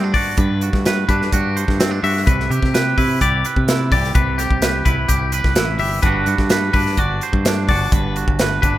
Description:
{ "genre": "math rock and midwest emo", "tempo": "127 BPM", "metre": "4/4", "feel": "straight", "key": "G major", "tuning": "A4 = 440 Hz", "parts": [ { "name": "twangy electric guitar", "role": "accompaniment", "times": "0.0-8.8 s", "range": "G2 to C5", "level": "-22 LUFS", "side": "right 5 dB", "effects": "spring reverb" }, { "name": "growling fingered electric bass", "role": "bass", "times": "0.0-8.8 s", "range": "G1 to G3", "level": "-21 LUFS", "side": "equal", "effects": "overdrive" }, { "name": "twangy electric guitar", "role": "arpeggios", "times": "0.1-8.8 s", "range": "G4 to E5", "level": "-23 LUFS", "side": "left 6 dB", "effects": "tape echo" }, { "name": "modern studio drum kit", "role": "drums", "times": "0.1-8.7 s", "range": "hi-hat, kick drum, snare drum", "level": "-19 LUFS", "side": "equal", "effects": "none" } ], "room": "light reverb, small room ambience", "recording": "rough home demo mix", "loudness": "-15 LUFS", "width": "side -14 dB against mid", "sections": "0.0-8.8 A section", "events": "none", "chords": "0.0 Gmaj7; 2.3 Cmaj7; 6.0 Gmaj7" }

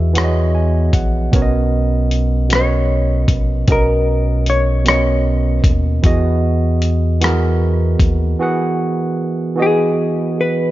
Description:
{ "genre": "slow six-eight R&B", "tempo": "51 BPM (dotted quarters)", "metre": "6/8", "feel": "straight", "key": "unclear", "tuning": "A4 = 440 Hz", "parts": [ { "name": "barky tine electric piano", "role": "accompaniment", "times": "0.0-10.7 s", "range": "B2 to G#5", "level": "-18 LUFS", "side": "right 3 dB", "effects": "overdrive" }, { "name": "round analog bass", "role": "bass", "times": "0.0-8.4 s", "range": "A#1 to E2", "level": "-16 LUFS", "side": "equal", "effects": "none" }, { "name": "dusty soul sampler-style drum kit", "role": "drums", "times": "0.2-8.2 s", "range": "hi-hat, kick drum, rim click", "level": "-17 LUFS", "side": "equal", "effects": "none" }, { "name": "hollow-body jazz guitar", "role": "melody", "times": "2.6-5.7, 9.6-10.7 s", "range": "G#4 to C#5", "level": "-18 LUFS", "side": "left 2 dB", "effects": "none" } ], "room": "light reverb", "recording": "dark, warm production, nothing above 7.5 kHz", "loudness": "-13 LUFS", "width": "side -15 dB against mid", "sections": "0.0-10.7 A section", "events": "tine electric piano fill 0.2-1.3; break 8.4-10.7", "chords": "0.0 Emaj9; 1.3 Bmaj9; 6.0 Emaj9" }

